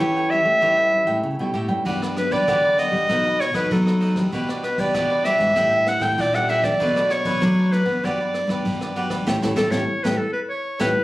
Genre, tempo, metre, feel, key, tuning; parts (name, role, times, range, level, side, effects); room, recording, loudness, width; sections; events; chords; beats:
samba and choro; 97 BPM; 4/4; straight; A4 = 438 Hz
bright clarinet; melody; 0.0-11.0 s; A4 to G5; -20 LUFS; equal; slapback echo
cavaquinho; accompaniment; 0.0-10.9 s; D4 to G5; -28 LUFS; right 2 dB
nylon-string guitar; accompaniment; 0.0-10.9 s; F#2 to E4; -29 LUFS; left 1 dB
nylon-string guitar; bass; 0.0-10.9 s; G2 to B3; -24 LUFS; equal
jazz brush drum kit; drums; 1.9-11.0 s; kick drum, ride cymbal, rim click, snare drum; -30 LUFS; equal
moderate studio reverb, RT60 0.6 s; recorded on a phone in the room, club reverb; -18 LUFS; side -17 dB against mid
0.0-11.0 A section
band accent 9.3-11.0
0.0 A7; 1.9 Gmaj7; 3.1 B7; 4.3 Em7/B; 5.6 A7sus4; 6.8 Bm7; 8.0 Gmaj7; 9.3 A7
0.01 0.63 1.25 | 1.87 2.48 3.10 3.72 | 4.34 4.95 5.57 6.19 | 6.80 7.42 8.04 8.65 | 9.27 9.89 10.50